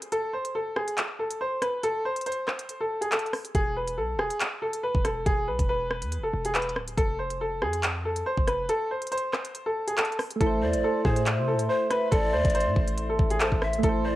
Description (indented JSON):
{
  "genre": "hip hop, drill",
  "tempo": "140 BPM",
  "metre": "4/4",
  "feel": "half-time",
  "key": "A harmonic minor",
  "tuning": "A4 = 440 Hz",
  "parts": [
    { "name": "drill drum kit", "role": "drums", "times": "0.0-13.9 s", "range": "handclaps, hi-hat, kick drum, rim click", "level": "-28 LUFS", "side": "equal", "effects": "cassette tape" },
    { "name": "bright grand piano", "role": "melody", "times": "0.1-14.2 s", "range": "G#4 to C5", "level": "-28 LUFS", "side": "equal", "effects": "cassette tape" },
    { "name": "hard-hitting 808-style bass", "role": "bass", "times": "3.5-14.2 s", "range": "D1 to C3", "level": "-31 LUFS", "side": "equal", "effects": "none" },
    { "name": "soft electric-piano-like synth keys", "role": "accompaniment", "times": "10.4-14.2 s", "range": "A3 to C5", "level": "-30 LUFS", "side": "right 3 dB", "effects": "chorus, phaser" },
    { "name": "glass harmonica", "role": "sustained chords", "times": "10.4-14.2 s", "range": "A4 to C6", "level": "-37 LUFS", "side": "equal", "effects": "none" },
    { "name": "breathy mellow large pan pipes", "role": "second line", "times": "10.6-14.2 s", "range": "C5 to E5", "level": "-30 LUFS", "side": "left 3 dB", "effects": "tape echo" }
  ],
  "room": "light reverb, studio ambience",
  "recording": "home recording on cassette",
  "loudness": "-24 LUFS",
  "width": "side -15 dB against mid",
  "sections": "0.0-10.4 A section; 10.4-14.2 B section",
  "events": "break 0.0-3.5; kick muted 8.7-10.4",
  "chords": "0.0 N.C.; 3.5 E5; 7.0 F5; 10.4 Am"
}